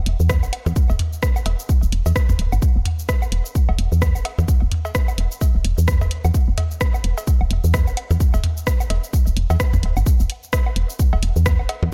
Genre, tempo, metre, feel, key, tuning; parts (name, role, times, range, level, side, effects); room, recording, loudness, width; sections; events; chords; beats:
minimal techno; 129 BPM; 4/4; swing 58% on 16ths; E minor; A4 = 440 Hz
woody FM bass; bass; 0.0-11.9 s; D1 to E2; -21 LUFS; equal; tube saturation, sidechain pumping
house drum kit; drums; 0.1-11.8 s; hi-hat, rim click, shaker; -30 LUFS; equal
electronic kick drum; drums; 0.3-11.6 s; -20 LUFS; equal
electronic cowbell, woodblock and toms; percussion; 0.3-11.9 s; -29 LUFS; equal; overdrive, delay
digital ambience; -19 LUFS; mono
0.0-10.1 A section; 10.1-11.9 B section
drop 10.1-11.9
0.30 | 0.76 1.23 1.69 2.16 | 2.62 3.09 3.55 4.02 | 4.48 4.95 5.41 5.88 | 6.34 6.81 7.27 7.74 | 8.20 8.67 9.13 9.60 | 10.06 10.53 10.99 11.46